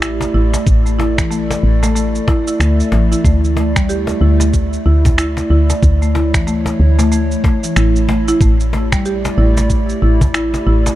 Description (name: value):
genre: organic downtempo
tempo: 93 BPM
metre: 4/4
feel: swing 60% on 16ths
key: A major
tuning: A4 = 440 Hz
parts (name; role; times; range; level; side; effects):
- warbly tape-like pad; sustained chords; 0.0-11.0 s; A3 to D5; -21 LUFS; right 2 dB; chorus, built-in reverb, sidechain pumping
- buzzing marimba with medium hard mallets; arpeggios; 0.0-11.0 s; E3 to G4; -19 LUFS; left 1 dB; vintage 12-bit sampler grit, digital delay
- woody FM bass; bass; 0.0-10.9 s; A1 to D2; -14 LUFS; equal; none
- electronic finger snaps and cabasa; drums; 0.0-11.0 s; none; -24 LUFS; right 1 dB; none
- cajon; percussion; 0.2-11.0 s; none; -23 LUFS; left 2 dB; none
- electronic kick drum; drums; 0.7-10.3 s; none; -14 LUFS; equal; none
room: little or no reverb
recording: dark, warm production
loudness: -12 LUFS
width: side -14 dB against mid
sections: 0.0-11.0 A section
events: none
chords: 0.0 A7sus4